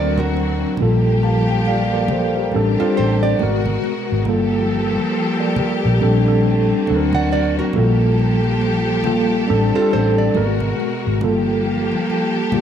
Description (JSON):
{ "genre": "R&B, neo-soul", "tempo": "69 BPM", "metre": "4/4", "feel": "swing 59% on 16ths", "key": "G minor", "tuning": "A4 = 442 Hz", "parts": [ { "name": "nylon-string guitar", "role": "second line", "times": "0.0-10.6 s", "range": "F4 to F#5", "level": "-24 LUFS", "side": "right 6 dB", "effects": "none" }, { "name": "mellow tine electric piano", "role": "accompaniment", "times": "0.0-12.6 s", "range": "F#3 to A5", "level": "-18 LUFS", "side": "equal", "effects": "medium stereo tremolo" }, { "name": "clear symphonic string section", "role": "sustained chords", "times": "0.0-12.6 s", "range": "Cb3 to Bb4", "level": "-24 LUFS", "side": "left 1 dB", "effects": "none" }, { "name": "vintage muted fingered electric bass", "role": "bass", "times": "0.0-12.6 s", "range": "G1 to D2", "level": "-19 LUFS", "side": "equal", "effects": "none" }, { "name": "congas", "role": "percussion", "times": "0.2-12.6 s", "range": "none", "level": "-28 LUFS", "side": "right 2 dB", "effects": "none" } ], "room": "light reverb, studio ambience", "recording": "none", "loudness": "-15 LUFS", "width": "side -9 dB against mid", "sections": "0.0-12.6 A section", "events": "none", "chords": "0.0 D7b13; 0.8 Gm9/Bb; 2.5 D7sus4/A; 3.4 Abm9; 4.3 Gm9; 6.0 Bbmaj13; 6.9 D7b13; 7.7 Gm9/Bb; 9.5 D7sus4/A; 10.4 Abm9; 11.2 Gm9", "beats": "| 0.79 1.66 2.53 3.40 | 4.27 5.14 6.01 6.88 | 7.75 8.62 9.49 10.36 | 11.23 12.10" }